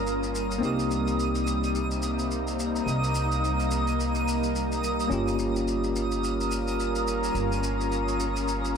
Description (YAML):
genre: sunset chillout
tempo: 107 BPM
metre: 4/4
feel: swing 57% on 16ths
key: unclear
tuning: A4 = 441 Hz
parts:
  - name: tine electric piano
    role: accompaniment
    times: 0.0-8.8 s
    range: Bb3 to G4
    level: -30 LUFS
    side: left 1 dB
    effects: auto-pan, analog delay
  - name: shimmering ambient pad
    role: sustained chords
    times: 0.0-8.8 s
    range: C3 to Bb4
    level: -29 LUFS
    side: left 1 dB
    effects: chorus, built-in reverb, vintage 12-bit sampler grit
  - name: upright bass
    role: bass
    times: 0.0-8.8 s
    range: G1 to C2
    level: -30 LUFS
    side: equal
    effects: none
  - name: twinkling granular texture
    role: texture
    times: 0.0-8.8 s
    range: Eb6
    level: -34 LUFS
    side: right 5 dB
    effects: built-in reverb
  - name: shaker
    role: drums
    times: 0.1-8.7 s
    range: none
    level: -38 LUFS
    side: left 1 dB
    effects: none
room: moderate spring reverb, RT60 1.5 s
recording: echo-heavy mix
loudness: -24 LUFS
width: side -7 dB against mid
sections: 0.0-8.8 A section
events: none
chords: 0.0 Gm7b5; 0.6 Cm7; 5.1 Gm7b5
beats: 0.06 | 0.62 1.18 1.74 2.30 | 2.86 3.42 3.98 4.55 | 5.11 5.67 6.23 6.79 | 7.35 7.91 8.47